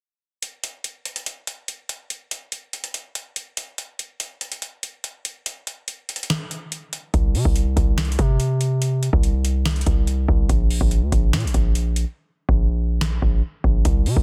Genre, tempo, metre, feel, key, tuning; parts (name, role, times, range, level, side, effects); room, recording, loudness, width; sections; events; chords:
hip hop, trap; 143 BPM; 4/4; half-time; A4 = 440 Hz
booming analog drum machine; drums; 0.4-14.2 s; hi-hat, kick drum, snare drum; -24 LUFS; equal
hard-hitting 808-style bass; bass; 7.1-14.2 s; Bb1 to C3; -23 LUFS; equal
little or no reverb; dense, heavily limited modern master; -23 LUFS; mono
0.4-7.1 A section; 7.1-14.2 B section
hi-hats muted 12.2-13.9